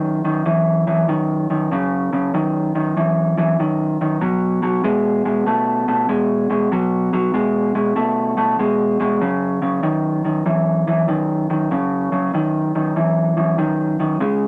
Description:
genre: blues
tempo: 96 BPM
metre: 4/4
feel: swing 66% on 8ths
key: unclear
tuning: A4 = 439 Hz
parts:
  - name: electric guitar through a small old amp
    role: solo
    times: 0.0-14.5 s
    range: F#2 to A3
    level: -19 LUFS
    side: equal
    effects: none
room: moderate studio reverb, RT60 0.6 s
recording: none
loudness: -19 LUFS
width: mono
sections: 0.0-14.5 A section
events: none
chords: 0.0 F#5; 4.2 B5; 9.2 F#5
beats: 0.47 1.09 | 1.72 2.34 2.97 3.59 | 4.22 4.84 5.47 6.09 | 6.72 7.35 7.97 8.60 | 9.22 9.85 10.47 11.09 | 11.72 12.34 12.97 13.59 | 14.22

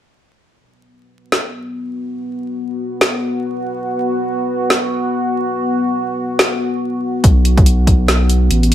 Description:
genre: deep dubstep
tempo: 142 BPM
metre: 4/4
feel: swing 59% on 16ths, half-time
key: unclear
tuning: A4 = 440 Hz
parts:
  - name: deep dark ambient pad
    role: sustained chords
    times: 1.5-8.7 s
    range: B3 to F#4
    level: -19 LUFS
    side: equal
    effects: chorus, built-in reverb
  - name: deep house drum kit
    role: drums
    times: 1.3-8.7 s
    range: hi-hat, snare drum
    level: -16 LUFS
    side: equal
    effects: none
  - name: saturated sub bass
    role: bass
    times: 7.2-8.7 s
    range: A1 to B1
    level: -13 LUFS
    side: equal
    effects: none
  - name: electronic kick drum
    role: drums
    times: 7.2-8.0 s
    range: none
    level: -11 LUFS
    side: equal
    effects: none
room: light reverb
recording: vinyl crackle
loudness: -14 LUFS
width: side -11 dB against mid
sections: 0.5-7.2 A section; 7.2-8.7 B section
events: none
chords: 0.5 B5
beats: | 0.48 0.90 1.32 1.75 | 2.17 2.59 3.01 3.44 | 3.86 4.28 4.70 5.13 | 5.55 5.97 6.39 6.82 | 7.24 7.66 8.08 8.51

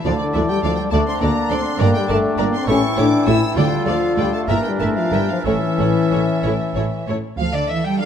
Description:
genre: quick classical-period movement for symphony orchestra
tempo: 60-69 BPM (dotted quarters)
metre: 6/8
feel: rubato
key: D minor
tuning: A4 = 440 Hz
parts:
  - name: clear chamber violin section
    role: second line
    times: 0.0-8.1 s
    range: A4 to E6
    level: -29 LUFS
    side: left 2 dB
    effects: none
  - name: clear clarinet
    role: second line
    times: 0.0-6.9 s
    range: C#4 to F4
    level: -28 LUFS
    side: equal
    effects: none
  - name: dark French horn section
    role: sustained chords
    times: 0.0-7.1 s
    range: D3 to E4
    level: -20 LUFS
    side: left 4 dB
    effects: none
  - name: warm symphonic violin section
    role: melody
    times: 0.1-8.1 s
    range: C#5 to G5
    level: -28 LUFS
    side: left 4 dB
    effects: none
  - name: mellow hollow silver concert flute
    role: second line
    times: 0.1-7.1 s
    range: C#5 to A5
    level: -29 LUFS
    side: left 1 dB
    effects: none
  - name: warm oboe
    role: second line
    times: 0.1-7.1 s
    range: A4 to D5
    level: -29 LUFS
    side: right 2 dB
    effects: none
  - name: clear bassoon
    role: accompaniment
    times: 0.1-7.1 s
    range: D3 to E3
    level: -27 LUFS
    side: right 2 dB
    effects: none
  - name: dark symphonic viola section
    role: accompaniment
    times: 0.1-8.1 s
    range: D4 to Bb4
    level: -28 LUFS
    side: right 1 dB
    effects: none
  - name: rich chamber cello section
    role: bass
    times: 0.1-8.1 s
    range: D2 to G3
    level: -24 LUFS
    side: right 4 dB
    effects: none
  - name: warm chamber double bass section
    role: bass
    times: 0.1-8.1 s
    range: G1 to D2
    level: -25 LUFS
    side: right 4 dB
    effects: none
  - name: timpani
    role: percussion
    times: 3.6-4.5 s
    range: D3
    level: -23 LUFS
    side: right 2 dB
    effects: none
room: moderate concert hall reverb, RT60 1.7 s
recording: none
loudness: -16 LUFS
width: side -8 dB against mid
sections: 0.0-7.4 A section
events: none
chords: 0.1 D5; 1.8 Gm; 2.7 A7; 3.6 Dm; 4.5 Edim; 5.5 A; 7.4 Dm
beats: | 0.06 0.93 | 1.81 2.69 | 3.58 4.50 | 5.46 6.45 | 7.41

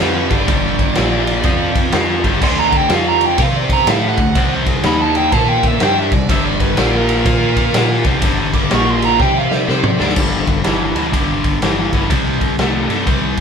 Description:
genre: blues rock power trio and southern rock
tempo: 124 BPM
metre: 4/4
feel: swing 64% on 8ths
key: unclear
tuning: A4 = 439 Hz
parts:
  - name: dark smooth lead guitar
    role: second line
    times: 0.0-10.2 s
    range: Bb4 to D6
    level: -18 LUFS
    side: right 5 dB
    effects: overdrive
  - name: overdriven electric guitar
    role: riff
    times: 0.0-13.4 s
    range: G2 to C5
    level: -17 LUFS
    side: left 1 dB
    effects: none
  - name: vintage muted fingered electric bass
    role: bass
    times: 0.0-13.4 s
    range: G1 to C3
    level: -23 LUFS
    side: equal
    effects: none
  - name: raw garage drum kit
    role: drums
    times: 0.3-13.4 s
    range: crash cymbal, kick drum, ride cymbal, snare drum, toms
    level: -17 LUFS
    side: equal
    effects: none
room: moderate studio ambience, RT60 0.5 s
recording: band playing live in one room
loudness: -13 LUFS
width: side -6 dB against mid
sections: 0.0-10.2 A section; 10.2-13.4 B section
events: lead electric guitar solo 0.0-10.2; drum fill 9.2-10.2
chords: 0.0 G5; 1.0 Bb5; 1.5 F5; 1.9 G5; 2.4 D5; 2.9 F5; 3.4 C5; 3.9 D; 4.4 C5; 4.8 Eb5; 5.3 Bb5; 5.8 C5; 6.3 G5; 6.8 Bb5; 7.7 C5; 8.2 G5; 8.7 Bb5; 9.2 C5; 9.7 D5; 10.2 G5; 12.1 C5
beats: 0.01 | 0.49 0.97 1.45 1.94 | 2.42 2.90 3.39 3.87 | 4.36 4.84 5.32 5.81 | 6.29 6.78 7.26 7.75 | 8.23 8.71 9.20 9.68 | 10.17 10.65 11.14 11.62 | 12.11 12.59 13.08

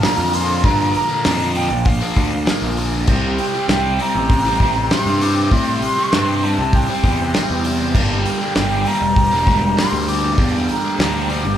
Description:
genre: psychedelic rock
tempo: 99 BPM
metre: 4/4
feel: straight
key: unclear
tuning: A4 = 444 Hz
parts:
  - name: breathy mellow jazz flute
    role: melody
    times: 0.0-11.6 s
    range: F5 to D6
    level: -21 LUFS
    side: equal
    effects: slapback echo
  - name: combo organ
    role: sustained chords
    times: 0.0-11.6 s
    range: G4 to G5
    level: -29 LUFS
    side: right 4 dB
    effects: none
  - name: overdriven electric guitar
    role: riff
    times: 0.0-11.6 s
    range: G2 to E4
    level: -22 LUFS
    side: left 1 dB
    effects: phaser
  - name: damped 70s drum kit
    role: drums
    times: 0.0-11.4 s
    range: crash cymbal, hi-hat, kick drum, snare drum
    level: -20 LUFS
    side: equal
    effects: none
  - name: fuzz picked electric bass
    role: bass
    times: 0.2-11.6 s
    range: E1 to A2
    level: -21 LUFS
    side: equal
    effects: overdrive
room: moderate large studio reverb, RT60 1.2 s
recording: band playing live in one room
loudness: -15 LUFS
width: side -10 dB against mid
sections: 0.0-11.6 A section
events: none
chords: 0.0 Bb; 3.1 C; 7.9 Gm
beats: 0.03 | 0.64 1.25 1.86 2.47 | 3.08 3.69 4.30 4.91 | 5.51 6.12 6.73 7.34 | 7.95 8.56 9.17 9.77 | 10.38 10.99

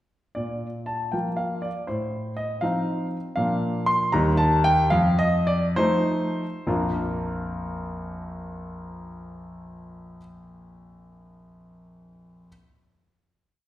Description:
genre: classical-period piano sonatina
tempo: 64-81 BPM (dotted quarters)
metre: 6/8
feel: straight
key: Bb major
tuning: A4 = 440 Hz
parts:
  - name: clear grand piano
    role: solo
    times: 0.3-12.5 s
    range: Bb1 to C6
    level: -23 LUFS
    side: equal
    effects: none
room: wet recital hall reverb, RT60 1.3 s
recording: heard from further back in the room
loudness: -22 LUFS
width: side -14 dB against mid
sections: 0.4-6.7 A section; 6.7-10.3 final chord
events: slowing down 2.6-6.7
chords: 0.4 Bb; 1.9 F7/A; 3.4 Bb; 4.1 Eb; 4.9 F7; 6.7 Bb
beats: | 0.37 1.13 | 1.88 2.62 | 3.37 4.13 | 4.92 5.76 | 6.68 7.58 | 8.48 9.37

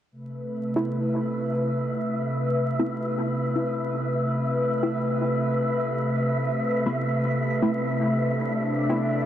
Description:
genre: dub techno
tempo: 118 BPM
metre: 4/4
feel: straight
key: A minor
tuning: A4 = 440 Hz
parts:
  - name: airy breathy pad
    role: sustained chords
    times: 0.2-9.3 s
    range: C3 to B4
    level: -25 LUFS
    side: equal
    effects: chorus
  - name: wind-like tuned noise texture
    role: texture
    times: 0.7-9.3 s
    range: E5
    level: -31 LUFS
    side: right 1 dB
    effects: built-in reverb, wide subtle chorus
  - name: filtered dub chord stab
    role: stabs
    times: 0.8-9.3 s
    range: A3 to E4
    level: -30 LUFS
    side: equal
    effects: phaser, dub echo
room: wet huge ambient reverb, RT60 8.1 s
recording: dreamy mix soaked in reverb, vinyl crackle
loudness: -23 LUFS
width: side -11 dB against mid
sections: 0.1-9.3 A section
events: filter sweep on synth stab 0.1-9.3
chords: 0.1 Amadd9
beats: | 0.12 0.63 1.14 1.65 | 2.15 2.66 3.17 3.68 | 4.19 4.70 5.21 5.71 | 6.22 6.73 7.24 7.75 | 8.26 8.77

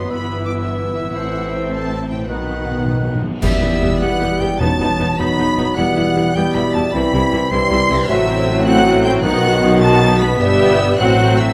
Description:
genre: classical, dramatic, fast romantic movement for symphony orchestra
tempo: 104 BPM (dotted quarters)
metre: 6/8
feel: rubato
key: E minor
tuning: A4 = 439 Hz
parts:
  - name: clear symphonic violin section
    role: melody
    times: 0.0-11.5 s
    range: E5 to C7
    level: -29 LUFS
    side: equal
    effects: none
  - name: bright silver concert flute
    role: second line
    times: 0.0-11.5 s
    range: E5 to F#6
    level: -26 LUFS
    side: equal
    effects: none
  - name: clear clarinet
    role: second line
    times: 0.0-11.5 s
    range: B3 to C5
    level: -28 LUFS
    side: equal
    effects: none
  - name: clear symphonic violin section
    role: second line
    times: 0.0-11.5 s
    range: F#4 to C6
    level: -29 LUFS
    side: equal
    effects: none
  - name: mellow bassoon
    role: accompaniment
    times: 0.0-11.5 s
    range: D#3 to G3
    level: -25 LUFS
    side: equal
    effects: none
  - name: rich symphonic viola section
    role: accompaniment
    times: 0.0-11.5 s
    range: F#3 to G4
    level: -25 LUFS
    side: equal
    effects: none
  - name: dark French horn section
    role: sustained chords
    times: 0.0-11.5 s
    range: D#3 to B4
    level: -25 LUFS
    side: equal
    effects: none
  - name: concert harp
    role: arpeggios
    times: 0.0-11.5 s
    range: G2 to B5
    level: -28 LUFS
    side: equal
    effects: none
  - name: clear symphonic double bass section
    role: bass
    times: 0.0-11.5 s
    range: E1 to C2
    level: -26 LUFS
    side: equal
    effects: none
  - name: rich symphonic cello section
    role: bass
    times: 0.0-11.5 s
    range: E2 to C3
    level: -26 LUFS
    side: equal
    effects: none
  - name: cymbal swell, clash cymbals and concert bass drum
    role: percussion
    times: 1.2-4.2 s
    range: none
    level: -27 LUFS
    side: equal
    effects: none
  - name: timpani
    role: percussion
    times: 2.3-5.1, 9.2-9.8 s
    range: E2 to B2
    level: -27 LUFS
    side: equal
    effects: none
  - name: dark trombone section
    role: sustained chords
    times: 3.4-11.5 s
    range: F#2 to G3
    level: -27 LUFS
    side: equal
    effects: none
room: light reverb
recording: close, detailed microphones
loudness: -16 LUFS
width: mono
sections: 0.0-3.4 A section; 3.4-11.5 B section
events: timpani fill 2.3-3.4; band accent 3.4-3.8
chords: 0.1 Em/G; 1.2 Am; 2.3 B; 3.4 Em; 4.6 B7/E; 5.8 Em; 6.9 C; 8.1 F#m7b5/A; 9.2 B; 10.4 Em/G; 11.0 F#dim/A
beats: | 0.10 0.63 | 1.17 1.72 | 2.29 2.85 | 3.42 4.01 | 4.60 5.19 | 5.77 6.35 | 6.94 7.51 | 8.09 8.66 | 9.23 9.81 | 10.39 10.99

